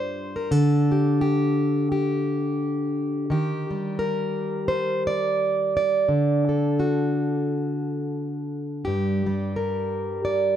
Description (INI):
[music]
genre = folk, solo fingerstyle acoustic guitar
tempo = 86 BPM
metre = 4/4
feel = swing 57% on 8ths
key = unclear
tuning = A4 = 437 Hz
[part]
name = fingerpicked plugged-in steel-string acoustic guitar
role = solo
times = 0.0-10.6 s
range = G2 to D5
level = -22 LUFS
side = equal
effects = none
[sound]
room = light reverb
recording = dark, warm production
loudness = -22 LUFS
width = side -10 dB against mid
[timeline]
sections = 0.0-10.6 A section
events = none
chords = 0.0 Gm7; 0.5 Dsus4; 3.3 Ebmaj7; 6.1 D; 8.9 Gm